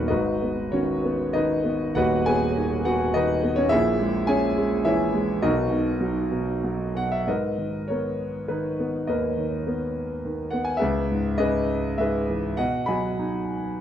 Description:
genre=classical, lyrical solo piano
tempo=92-106 BPM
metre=3/4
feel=rubato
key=G# minor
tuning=A4 = 440 Hz
part: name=warm concert grand piano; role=solo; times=0.0-13.8 s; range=D#1 to B5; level=-22 LUFS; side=equal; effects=none
room=moderate recital hall reverb, RT60 1.6 s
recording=dark, warm production, lossy compression artefacts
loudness=-22 LUFS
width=side -10 dB against mid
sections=0.0-7.3 A section; 7.3-13.8 B section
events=none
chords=0.1 G#m7; 3.7 A#m7b5; 5.4 Bmaj7; 7.3 G#madd9; 10.8 C#m7; 12.6 B6

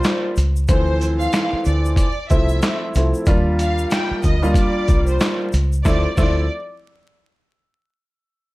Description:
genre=hip hop, boom-bap hip-hop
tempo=93 BPM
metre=4/4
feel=swing 59% on 16ths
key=D minor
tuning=A4 = 440 Hz
part: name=warm studio violin section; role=melody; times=0.0-6.5 s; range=C5 to G5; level=-26 LUFS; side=left 1 dB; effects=high-pass filter, low-pass filter, slapback echo
part: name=warm upright piano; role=accompaniment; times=0.0-6.4 s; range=E3 to F4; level=-22 LUFS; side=equal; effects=cassette tape, high-pass filter, low-pass filter
part: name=boom bap sampler-style drum kit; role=drums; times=0.0-6.4 s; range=handclaps, hi-hat, kick drum, shaker, snare drum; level=-19 LUFS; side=equal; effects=none
part: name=tube shaker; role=percussion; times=0.0-6.5 s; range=none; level=-41 LUFS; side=left 6 dB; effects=none
part: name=deep dub fingered electric bass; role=bass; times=0.4-6.5 s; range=C2 to Eb2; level=-19 LUFS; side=equal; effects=none
room=light reverb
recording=dark, warm production, vinyl crackle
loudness=-16 LUFS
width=side -20 dB against mid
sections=0.0-5.9 A section; 5.9-8.4 B section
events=none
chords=0.0 Ebmaj7 (rootless); 0.7 Dm9; 3.3 Ebmaj7; 5.9 Dm9

